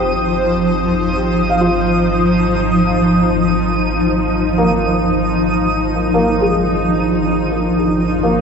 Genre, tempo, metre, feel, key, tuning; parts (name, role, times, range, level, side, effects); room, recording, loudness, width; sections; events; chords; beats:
ambient; free time; A4 = 440 Hz
granular cloud pad; sustained chords; 0.0-8.4 s; F3 to C5; -15 LUFS; equal; built-in reverb
felt-muted upright piano; arpeggios; 0.0-8.4 s; Ab3 to F5; -21 LUFS; left 1 dB; ping-pong delay
deep rumbling drone; bass; 0.0-8.4 s; Ab1; -24 LUFS; equal; built-in reverb
twinkling granular texture; texture; 0.0-8.4 s; Eb6; -22 LUFS; right 1 dB; built-in reverb
wet concert hall reverb, RT60 2.1 s; worn, warbling old tape, cassette tape, warbly pitch drift, nothing above 8.0 kHz; -13 LUFS; side -6 dB against mid
0.0-8.4 A section
0.0 Ab6
free time